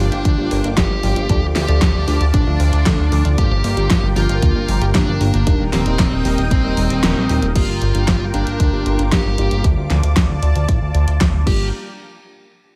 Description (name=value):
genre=synthwave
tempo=115 BPM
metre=4/4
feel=straight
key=G minor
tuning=A4 = 440 Hz
part: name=dark smooth lead guitar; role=melody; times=0.0-11.7 s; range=C4 to G4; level=-26 LUFS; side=equal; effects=overdrive, diffuse ambient delay
part: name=lush unison pad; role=sustained chords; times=0.0-11.7 s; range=Bb3 to Eb6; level=-30 LUFS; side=equal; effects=chorus, phaser, sidechain pumping
part: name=unison pluck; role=arpeggios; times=0.0-7.5 s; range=F3 to Eb5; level=-30 LUFS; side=equal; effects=none
part: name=FM electric piano with soft pad layer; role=stabs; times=0.0-11.7 s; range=F3 to Bb4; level=-29 LUFS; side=equal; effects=chorus, tape echo
part: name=chorused synth bass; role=bass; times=0.0-11.7 s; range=Eb1 to D2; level=-20 LUFS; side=equal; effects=sidechain pumping
part: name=pop drum kit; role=drums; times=0.1-11.6 s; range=crash cymbal, hi-hat, snare drum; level=-25 LUFS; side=equal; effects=none
part: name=electronic kick drum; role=drums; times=0.3-11.6 s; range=none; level=-20 LUFS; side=equal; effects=none
room=moderate plate reverb, RT60 1.7 s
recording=dreamy mix soaked in reverb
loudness=-17 LUFS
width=mono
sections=0.0-7.6 A section; 7.6-11.7 B section; 11.7-12.8 C section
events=kick drops out 7.0-7.6; band accent 7.0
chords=0.0 Gm7; 1.3 Dm; 3.4 Gm7; 5.5 Eb; 7.6 Gm7; 9.6 Dm; 11.5 Gm7; 11.7 N.C.